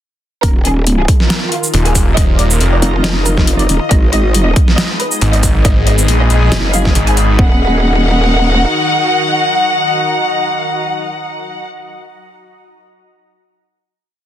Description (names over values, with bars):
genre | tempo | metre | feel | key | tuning
heavy wobble dubstep | 138 BPM | 4/4 | swing 54% on 16ths, half-time | Eb minor | A4 = 440 Hz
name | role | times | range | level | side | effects
rich studio violin section | melody | 0.4-11.6 s | F4 to Ab5 | -18 LUFS | left 1 dB | vintage 12-bit sampler grit, tape echo
supersaw pad | sustained chords | 0.8-11.6 s | Eb3 to Bb4 | -23 LUFS | left 1 dB | phaser, sidechain pumping, low-pass filter
growl bass | bass | 0.4-8.7 s | Eb1 to Ab1 | -13 LUFS | equal | chorus, overdrive
dubstep drum kit | drums | 0.4-7.3 s | hi-hat, shaker, snare drum | -17 LUFS | equal | overdrive
electronic kick drum | drums | 0.4-7.5 s | none | -12 LUFS | equal | overdrive
granular cloud pad | texture | 1.5-11.6 s | F4 to Cb6 | -21 LUFS | left 2 dB | built-in reverb, sidechain pumping
snarling distorted saw bass | bass | 1.7-7.4 s | Eb1 to Bb1 | -12 LUFS | equal | distortion, overdrive
room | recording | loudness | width
little or no reverb | dense, heavily limited modern master | -10 LUFS | side -11 dB against mid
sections
0.4-7.4 drop; 7.4-10.9 final chord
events
drop 0.4-7.4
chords
0.4 Ebsus2; 3.9 Abm; 7.4 Ebm